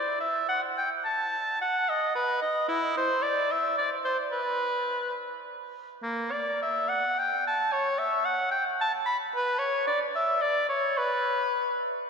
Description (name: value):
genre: classical, baroque-style fantasia for unaccompanied oboe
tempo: 73 BPM (dotted quarters)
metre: 6/8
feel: rubato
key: E minor, B minor from 6.0 s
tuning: A4 = 440 Hz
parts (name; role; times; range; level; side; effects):
- clear oboe; solo; 0.0-11.9 s; A#3 to B5; -25 LUFS; equal; none
room: wet cathedral reverb, RT60 4.3 s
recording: recorded in a church or concert hall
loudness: -25 LUFS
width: side -5 dB against mid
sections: 0.0-12.1 A section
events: none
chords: none